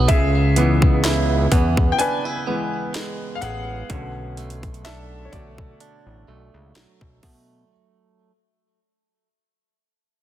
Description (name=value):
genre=contemporary R&B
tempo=63 BPM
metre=4/4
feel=swing 54% on 16ths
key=B dorian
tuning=A4 = 440 Hz
part: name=clear concert grand piano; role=accompaniment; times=0.0-7.7 s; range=D3 to G#5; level=-25 LUFS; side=left 2 dB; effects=none
part: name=direct-recorded clean electric guitar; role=arpeggios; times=0.0-8.3 s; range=B2 to F#4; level=-26 LUFS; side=right 6 dB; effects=ping-pong delay
part: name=fat analog bass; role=bass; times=0.0-7.6 s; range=A1 to B2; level=-21 LUFS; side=left 1 dB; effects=none
part: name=trap drum kit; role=drums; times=0.1-7.5 s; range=hi-hat, kick drum, snare drum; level=-20 LUFS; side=left 1 dB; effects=none
room=little or no reverb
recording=dense, heavily limited modern master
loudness=-17 LUFS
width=side -12 dB against mid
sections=0.0-7.7 A section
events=fade-out 0.0-7.7; grand piano solo 0.0-7.7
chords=0.1 C#m7; 3.9 Bm7